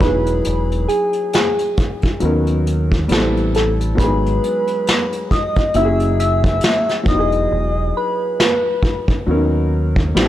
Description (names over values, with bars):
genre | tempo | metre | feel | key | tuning
lo-fi hip hop | 68 BPM | 4/4 | swing 58% on 16ths | unclear | A4 = 435 Hz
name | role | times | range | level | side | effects
soft struck synth lead | melody | 0.0-9.2 s | G#4 to E5 | -19 LUFS | equal | chorus
warm upright piano | accompaniment | 0.0-10.3 s | F#3 to A#4 | -21 LUFS | left 1 dB | cassette tape
deep dub fingered electric bass | bass | 0.0-10.3 s | E1 to D#2 | -19 LUFS | equal | none
vintage brush drum kit | drums | 0.0-10.3 s | hi-hat, kick drum, snare drum | -18 LUFS | equal | none
room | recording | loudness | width
little or no reverb | transformer saturation | -15 LUFS | side -13 dB against mid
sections
0.0-10.3 A section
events
hi-hats muted 7.5-10.3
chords
0.0 Emaj7; 2.2 Bmaj7/D#; 3.1 Am7; 4.0 G#m7; 5.7 F#7; 7.1 Emaj7; 9.3 Bmaj7/D#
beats
| 0.44 1.32 2.21 3.09 | 3.97 4.85 5.74 6.62 | 7.50 8.38 9.27 10.15